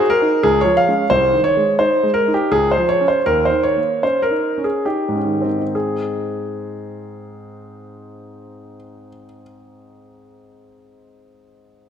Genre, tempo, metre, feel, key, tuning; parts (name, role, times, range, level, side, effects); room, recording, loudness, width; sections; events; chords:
classical, baroque-style suite movement for grand piano; 65-91 BPM; 3/4; rubato; Ab major; A4 = 440 Hz
warm grand piano; solo; 0.0-11.9 s; C2 to F5; -16 LUFS; equal
moderate scoring stage reverb, RT60 1.7 s; -15 LUFS; side -8 dB against mid
0.0-5.7 A section; 5.7-11.0 B section
slowing down 0.1-5.7
0.4 Db; 1.1 Ab/C; 2.5 Db; 3.2 Eb7; 5.7 Ab